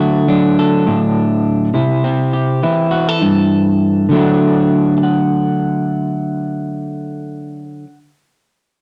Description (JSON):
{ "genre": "highlife", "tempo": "102 BPM", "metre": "4/4", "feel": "straight", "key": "D mixolydian", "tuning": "A4 = 441 Hz", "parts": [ { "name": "electric guitar at the edge of break-up", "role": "solo", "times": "0.0-8.0 s", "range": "G2 to F#5", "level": "-15 LUFS", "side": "equal", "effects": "none" } ], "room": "wet club reverb, RT60 0.6 s", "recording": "none", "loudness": "-15 LUFS", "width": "mono", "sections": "0.0-4.1 A section; 4.1-6.4 B section", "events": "none", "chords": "0.0 D; 1.7 C; 4.1 D" }